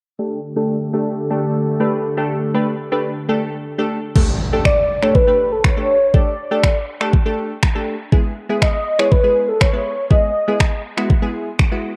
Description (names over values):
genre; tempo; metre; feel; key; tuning
dance-pop; 121 BPM; 4/4; straight; unclear; A4 = 440 Hz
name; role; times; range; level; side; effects
wavetable chord stab; accompaniment; 0.2-11.9 s; G#3 to B4; -24 LUFS; equal; sidechain pumping, low-pass filter
warm analog pad; sustained chords; 0.2-4.1 s; D3 to A4; -25 LUFS; equal; chorus, sidechain pumping, low-pass filter
pop drum kit; drums; 4.2-11.7 s; crash cymbal, finger snaps, kick drum; -18 LUFS; equal; overdrive
impact; sound effects; 4.2-6.1 s; none; -28 LUFS; equal; none
warm velvety synth lead; melody; 4.7-10.8 s; A4 to D#5; -19 LUFS; equal; chorus, slapback echo
room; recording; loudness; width
moderate spring reverb, RT60 2.1 s; none; -18 LUFS; mono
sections
0.2-4.2 A section; 4.2-12.0 B section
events
filter sweep 0.2-4.2; impact 4.2-6.1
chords
0.2 Gsus2; 8.1 E